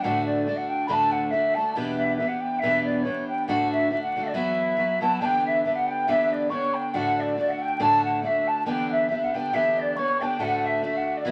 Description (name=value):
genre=celtic folk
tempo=139 BPM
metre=2/4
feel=swing 56% on 8ths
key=E dorian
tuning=A4 = 440 Hz
part: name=wooden flute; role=melody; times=0.0-11.3 s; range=C#5 to B5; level=-26 LUFS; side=equal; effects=none
part: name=fingerpicked twelve-string acoustic guitar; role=accompaniment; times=0.0-11.3 s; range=D2 to G4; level=-31 LUFS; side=equal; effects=none
part: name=mellow hollow mid whistle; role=second line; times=5.0-11.3 s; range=D5 to C#6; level=-32 LUFS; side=equal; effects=none
room=wet studio reverb, RT60 0.6 s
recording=vinyl crackle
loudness=-24 LUFS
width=mono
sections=0.0-5.2 A section; 5.2-11.3 A section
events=none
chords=0.0 D; 1.8 Em7; 3.5 D; 4.3 Esus2; 5.2 Em7; 6.9 D; 8.7 Em7; 10.4 D